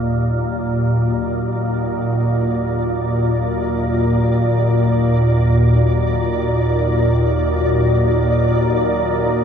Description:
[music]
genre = dark ambient drone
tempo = free time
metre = none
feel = none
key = Eb harmonic minor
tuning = A4 = 440 Hz
[part]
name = sweeping resonant pad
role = sustained chords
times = 0.0-9.4 s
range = Bb2 to Gb4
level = -25 LUFS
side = left 2 dB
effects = chorus
[part]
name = organ-like drone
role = drone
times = 0.0-9.4 s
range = Eb2 to Bb2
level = -16 LUFS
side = equal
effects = ensemble chorus, built-in reverb
[part]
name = flickering grainy texture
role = texture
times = 0.0-9.4 s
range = D5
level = -27 LUFS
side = right 2 dB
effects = built-in reverb
[sound]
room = wet cathedral reverb, RT60 6.0 s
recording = in a vast, echoing space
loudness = -15 LUFS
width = side -7 dB against mid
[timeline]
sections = 0.0-9.4 A section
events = none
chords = 0.0 Ebmmaj7

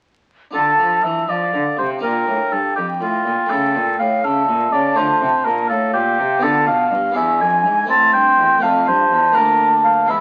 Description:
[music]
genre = classical, baroque-style sonata movement with continuo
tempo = 82 BPM (dotted quarters)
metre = 6/8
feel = straight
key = D minor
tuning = A4 = 441 Hz
[part]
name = warm oboe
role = melody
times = 0.5-10.2 s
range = F4 to A5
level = -20 LUFS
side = equal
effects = none
[part]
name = harpsichord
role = accompaniment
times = 0.5-10.2 s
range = D2 to F4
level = -28 LUFS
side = equal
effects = none
[part]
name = rich cello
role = bass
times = 0.5-10.2 s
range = D2 to F3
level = -28 LUFS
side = equal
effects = none
[part]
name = baroque flute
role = second line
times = 0.6-10.2 s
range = F5 to C6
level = -20 LUFS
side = equal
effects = none
[sound]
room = moderate studio reverb, RT60 0.8 s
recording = very old 78 rpm record, vinyl crackle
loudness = -17 LUFS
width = mono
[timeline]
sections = 0.5-10.2 A section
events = none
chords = 0.5 Dm; 2.0 Bb; 3.5 A; 5.0 Dm; 6.4 Bm7b5; 7.2 E7; 7.9 Am; 8.6 F; 9.4 Bb/D

